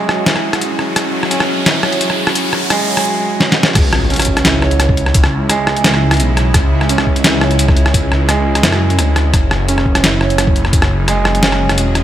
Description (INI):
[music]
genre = half-time drum and bass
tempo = 172 BPM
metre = 4/4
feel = half-time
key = C# minor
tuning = A4 = 436 Hz
[part]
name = bowed-like drone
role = sustained chords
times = 0.0-12.0 s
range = C#3 to G#4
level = -22 LUFS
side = equal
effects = built-in reverb, sidechain pumping
[part]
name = felt-muted upright piano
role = arpeggios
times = 0.0-12.0 s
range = G#3 to C#5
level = -19 LUFS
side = right 3 dB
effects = digital delay
[part]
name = riser and impact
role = sound effects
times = 0.0-5.1 s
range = none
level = -20 LUFS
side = equal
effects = none
[part]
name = backwards swelling texture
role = texture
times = 0.0-3.1 s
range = F#3 to F#4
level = -29 LUFS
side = left 2 dB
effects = none
[part]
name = boom bap sampler-style drum kit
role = drums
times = 0.1-12.0 s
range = crash cymbal, hi-hat, rim click, snare drum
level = -16 LUFS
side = left 1 dB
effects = studio reverb
[part]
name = phased detuned saw bass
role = bass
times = 3.8-12.0 s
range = E1 to F#2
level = -15 LUFS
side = equal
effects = phaser, tube saturation
[part]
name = electronic kick drum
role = drums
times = 3.8-10.8 s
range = none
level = -14 LUFS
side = equal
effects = studio reverb
[sound]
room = light reverb, digital ambience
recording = none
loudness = -11 LUFS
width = side -11 dB against mid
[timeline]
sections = 0.0-3.8 A section; 3.8-12.0 B section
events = build-up 0.0-3.8; riser 0.0-3.1; drum fill 3.4-3.8; drop 3.8-12.0; impact 3.8-5.1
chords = 0.0 F#sus2; 3.8 C#m; 9.3 F#sus2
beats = 0.26 0.61 | 0.96 1.31 1.66 2.01 | 2.36 2.71 3.06 3.40 | 3.75 4.10 4.45 4.80 | 5.15 5.50 5.85 6.19 | 6.54 6.89 7.24 7.59 | 7.94 8.29 8.64 8.98 | 9.33 9.68 10.03 10.38 | 10.73 11.08 11.43 11.78